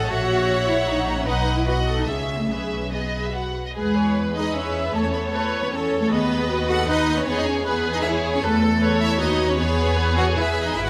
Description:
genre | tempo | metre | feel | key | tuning
quick classical-period movement for string orchestra | 153 BPM | 3/4 | rubato | E major | A4 = 443 Hz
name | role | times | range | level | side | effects
warm symphonic violin section | melody | 0.0-10.9 s | E4 to F#5 | -31 LUFS | equal | none
warm symphonic violin section | second line | 0.0-10.9 s | G#4 to F#5 | -31 LUFS | equal | none
rich symphonic viola section | accompaniment | 0.0-10.9 s | F#4 to E5 | -28 LUFS | equal | none
rich symphonic double bass section | bass | 0.0-10.9 s | G#1 to E2 | -28 LUFS | equal | none
warm studio cello section | bass | 0.0-10.9 s | G#3 to A4 | -27 LUFS | equal | none
room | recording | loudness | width
moderate scoring stage reverb, RT60 1.7 s | none | -22 LUFS | mono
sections
0.0-3.8 A section; 3.8-10.9 B section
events
none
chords
0.1 F#7/A#; 1.3 B; 2.1 C#m; 2.5 E/B; 3.3 B5; 3.8 E; 4.9 Aadd9/E; 6.1 B7/D#; 7.3 E; 8.4 B7/E; 9.6 E

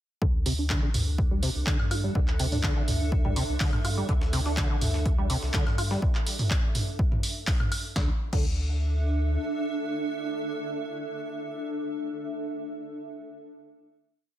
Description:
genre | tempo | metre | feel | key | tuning
acid house | 124 BPM | 4/4 | straight | unclear | A4 = 442 Hz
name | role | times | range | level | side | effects
deep acid bass | riff | 0.2-8.5 s | C3 to F4 | -33 LUFS | equal | tube saturation, wide subtle chorus, analog delay
warm sub bass | bass | 0.2-9.4 s | C2 to G2 | -28 LUFS | equal | sidechain pumping
electronic kick drum | drums | 0.2-8.5 s | none | -26 LUFS | equal | none
granular cloud pad | texture | 1.1-12.3 s | D4 to E5 | -34 LUFS | right 1 dB | built-in reverb, sidechain pumping
punchy analog drum machine | drums | 0.5-8.5 s | crash cymbal, handclaps, hi-hat, snare drum, toms, woodblock | -31 LUFS | right 1 dB | none
breakbeat sampler-style drum kit | drums | 4.1-6.0 s | hi-hat, snare drum | -42 LUFS | left 1 dB | high-pass filter on hats, soft clipping on snare, high-pass filter on snare, high-pass filter on room
room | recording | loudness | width
light reverb | dense, heavily limited modern master | -25 LUFS | side -12 dB against mid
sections
0.2-8.0 groove; 8.0-11.8 final chord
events
none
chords
0.2 D5

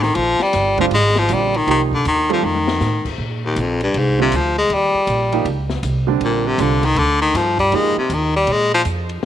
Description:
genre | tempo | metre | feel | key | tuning
jazz, small-group swing and bop | 159 BPM | 4/4 | swing 65% on 8ths | Bb mixolydian | A4 = 437 Hz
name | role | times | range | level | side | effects
edgy baritone saxophone | melody | 0.0-8.8 s | Eb2 to Ab3 | -17 LUFS | left 2 dB | none
upright bass | bass | 0.0-9.2 s | G1 to Bb2 | -22 LUFS | right 2 dB | none
open jazz drum kit | drums | 0.0-9.2 s | crash cymbal, hi-hat, kick drum, ride cymbal, snare drum, toms | -29 LUFS | left 5 dB | none
warm baby grand piano | accompaniment | 0.8-7.9 s | D3 to A4 | -22 LUFS | right 14 dB | none
room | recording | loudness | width
light reverb, studio reverb | 1960s-style stereo | -15 LUFS | side -11 dB against mid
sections
0.0-3.2 A section; 3.2-9.2 B section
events
drum fill 2.4-2.8; baritone saxophone solo 3.2-9.2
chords
0.2 Bb7; 1.7 Cm7; 2.4 F7; 3.2 Bb; 4.7 Eb7; 6.2 Bb; 7.7 Eb69; 8.5 Bb5

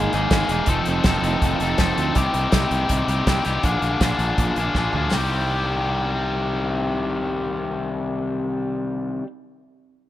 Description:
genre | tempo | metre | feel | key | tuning
indie rock | 162 BPM | 4/4 | straight | C minor | A4 = 441 Hz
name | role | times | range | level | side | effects
biting overdriven guitar | riff | 0.0-9.3 s | Bb2 to A4 | -22 LUFS | left 2 dB | none
crunchy overdriven guitar | riff | 0.0-2.2 s | F3 to Eb4 | -28 LUFS | right 11 dB | lush chorus, digital delay
fuzz fingered electric bass | bass | 0.0-9.2 s | E1 to D2 | -26 LUFS | right 1 dB | overdrive
loose indie drum kit | drums | 0.1-5.2 s | hi-hat, kick drum, snare drum, toms | -23 LUFS | equal | none
room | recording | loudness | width
light reverb | rough home demo mix | -19 LUFS | side -13 dB against mid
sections
0.0-5.1 A section; 5.1-8.1 B section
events
drum fill 4.8-5.1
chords
0.0 Absus2; 0.7 F7; 2.2 Cm; 3.6 Bb7; 5.1 Cm

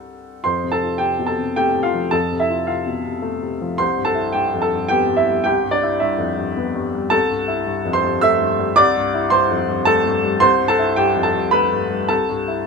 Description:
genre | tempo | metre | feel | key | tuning
neoclassical minimalist piano | 108 BPM | 3/4 | rubato | unclear | A4 = 441 Hz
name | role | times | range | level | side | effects
clear upright piano | solo | 0.0-12.7 s | C2 to E6 | -16 LUFS | equal | none
room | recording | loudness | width
light reverb | minimal, uncompressed stereo recording | -16 LUFS | side -4 dB against mid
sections
0.4-12.7 A section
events
none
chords
0.4 F; 3.8 Cmaj7

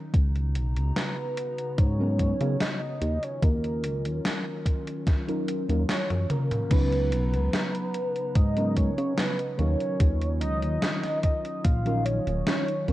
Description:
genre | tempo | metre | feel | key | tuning
vaporwave | 73 BPM | 4/4 | straight | unclear | A4 = 440 Hz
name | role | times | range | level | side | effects
warbly tape-like pad | sustained chords | 0.0-12.9 s | Db3 to Bb5 | -36 LUFS | equal | chorus, built-in reverb
chorused synth bass | bass | 0.1-12.9 s | Eb1 to Db3 | -26 LUFS | equal | none
electronic kick drum | drums | 0.1-11.8 s | none | -23 LUFS | equal | none
gated 80s digital drum machine | drums | 0.1-12.9 s | crash cymbal, hi-hat, snare drum, toms | -30 LUFS | equal | gated reverb, gated reverb snare
warm velvety synth lead | melody | 1.0-12.9 s | Bb4 to F5 | -32 LUFS | equal | chorus, tremolo, tape echo
mellow FM electric piano | accompaniment | 2.0-12.9 s | Gb3 to Db5 | -32 LUFS | equal | phaser, ensemble chorus
room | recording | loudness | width
light reverb | cassette tape | -24 LUFS | side -15 dB against mid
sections
0.0-6.7 A section; 6.7-12.9 B section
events
drum fill 6.1-6.7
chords
0.1 Db13sus4; 3.0 Ebm9; 6.7 Db13sus4; 9.6 Ebm9

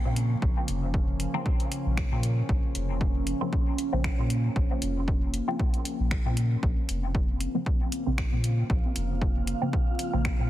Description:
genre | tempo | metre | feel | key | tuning
dub techno | 116 BPM | 4/4 | swing 55% on 16ths | Bb minor | A4 = 440 Hz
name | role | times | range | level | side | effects
warbly tape-like pad | sustained chords | 0.0-10.5 s | Db3 to Db4 | -34 LUFS | right 1 dB | chorus, built-in reverb, phaser, sidechain pumping
warm sub bass | bass | 0.0-10.5 s | F1 to Bb2 | -28 LUFS | equal | sidechain pumping
punchy analog drum machine | drums | 0.2-10.4 s | finger snaps, hi-hat | -36 LUFS | equal | soft clipping on snare
electronic kick drum | drums | 0.4-10.4 s | none | -27 LUFS | equal | none
filtered dub chord stab | stabs | 1.3-10.3 s | Db3 to C4 | -34 LUFS | equal | phaser, sidechain pumping, dub echo
wind-like tuned noise texture | texture | 8.0-10.5 s | F4 to F5 | -39 LUFS | right 2 dB | built-in reverb, sidechain pumping
room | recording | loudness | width
digital ambience | dense, heavily limited modern master, vinyl crackle | -25 LUFS | side -14 dB against mid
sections
0.0-6.6 A section; 6.6-10.5 A section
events
none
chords
0.0 Bbm; 6.6 Bbmadd9

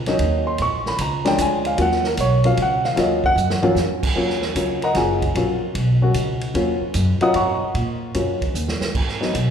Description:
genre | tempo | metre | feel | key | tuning
jazz, small-group swing and bop | 151 BPM | 3/4 | swing 67% on 8ths | Eb minor | A4 = 441 Hz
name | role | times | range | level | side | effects
upright bass | bass | 0.0-9.5 s | Gb1 to Bb2 | -23 LUFS | equal | none
warm baby grand piano | accompaniment | 0.1-9.3 s | F3 to Eb6 | -20 LUFS | equal | none
vintage drum kit | drums | 0.1-9.5 s | crash cymbal, hi-hat, kick drum, ride cymbal, snare drum, toms | -26 LUFS | right 2 dB | none
room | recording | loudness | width
wet recital hall reverb, RT60 1.7 s | recorded in a church or concert hall | -17 LUFS | side -8 dB against mid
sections
0.0-4.2 A section; 4.2-9.5 A section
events
drum fill 3.4-3.8, 8.5-8.9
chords
0.0 Bmaj7 (rootless); 0.6 Bb7#9; 1.8 Ebm7; 8.9 Abm7

